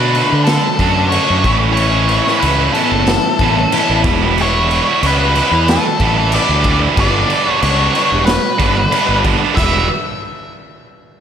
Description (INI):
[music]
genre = quiet-loud alternative rock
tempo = 92 BPM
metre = 4/4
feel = straight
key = E dorian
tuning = A4 = 439 Hz
[part]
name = octave-fuzz lead guitar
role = melody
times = 0.0-9.9 s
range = A4 to E5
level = -17 LUFS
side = left 3 dB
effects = distortion, digital delay
[part]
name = twelve-string electric guitar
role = arpeggios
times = 0.0-4.4 s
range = E2 to F#4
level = -23 LUFS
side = left 5 dB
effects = ensemble chorus
[part]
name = heavy high-gain guitar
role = riff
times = 0.0-9.8 s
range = G2 to F#4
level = -16 LUFS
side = right 8 dB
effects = distortion, slapback echo
[part]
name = fuzz fingered electric bass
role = bass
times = 0.0-9.9 s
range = E1 to D3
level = -17 LUFS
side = equal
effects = overdrive
[part]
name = raw garage drum kit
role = drums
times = 0.1-9.7 s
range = crash cymbal, kick drum, snare drum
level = -18 LUFS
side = left 1 dB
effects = none
[sound]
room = moderate concert hall reverb, RT60 2.2 s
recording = big arena sound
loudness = -11 LUFS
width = side -8 dB against mid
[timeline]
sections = 0.0-9.6 A section; 9.6-11.2 B section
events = none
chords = 0.0 D; 1.5 Aadd9; 4.1 Em; 7.0 G; 9.6 Em